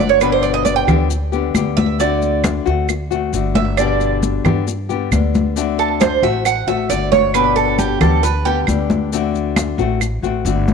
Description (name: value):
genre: latin, Cuban son and guajira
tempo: 135 BPM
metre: 4/4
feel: straight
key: G major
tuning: A4 = 440 Hz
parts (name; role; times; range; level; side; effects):
- nylon-string guitar; accompaniment; 0.0-10.7 s; B2 to G4; -20 LUFS; left 13 dB; none
- Cuban tres; arpeggios; 0.0-8.6 s; G4 to G5; -17 LUFS; right 10 dB; slapback echo
- upright bass; bass; 0.0-10.7 s; G1 to G2; -21 LUFS; equal; none
- claves; percussion; 0.2-10.2 s; none; -26 LUFS; right 13 dB; none
- congas; percussion; 0.2-10.7 s; none; -19 LUFS; left 2 dB; none
- maracas; percussion; 0.2-10.7 s; none; -31 LUFS; left 14 dB; none
room: light reverb, small room ambience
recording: 1960s-style stereo with parts hard left and right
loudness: -14 LUFS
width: side -6 dB against mid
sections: 0.0-10.7 A section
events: Cuban tres solo 0.0-10.7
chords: 0.2 G; 2.0 D7; 3.8 G; 5.6 D7; 7.3 G; 9.1 D7